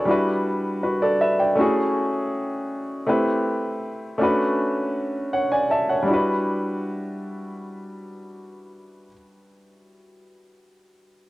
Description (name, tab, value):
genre	R&B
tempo	80 BPM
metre	4/4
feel	straight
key	E minor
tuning	A4 = 440 Hz
part	warm baby grand piano	accompaniment	0.0-11.3 s	G3 to A5	-21 LUFS	equal	cassette tape
room	moderate spring reverb, RT60 2.0 s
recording	home recording on cassette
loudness	-20 LUFS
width	side -18 dB against mid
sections	0.0-6.1 A section; 6.1-9.1 B section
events	none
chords	0.1 Em7; 1.6 F#m7; 3.1 Am7; 4.2 Bm7; 6.1 Em7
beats	| 0.08 0.83 1.58 2.33 | 3.08 3.83 4.58 5.33 | 6.08 6.83 7.58 8.33